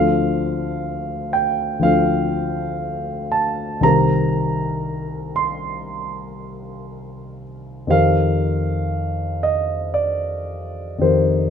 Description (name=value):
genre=classical, impressionist solo piano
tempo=53-63 BPM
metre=4/4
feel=rubato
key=unclear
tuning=A4 = 438 Hz
part: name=dark concert grand piano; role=solo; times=0.0-11.5 s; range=C2 to C6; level=-18 LUFS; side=equal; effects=none
room=light reverb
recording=minimal, uncompressed stereo recording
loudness=-18 LUFS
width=side -7 dB against mid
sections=0.0-11.5 A section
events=none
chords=0.0 Dm7; 3.9 Cm7; 7.9 F9sus4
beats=0.85 1.85 2.83 | 3.85 4.88 5.88 6.92 | 7.93 8.93 9.96 11.04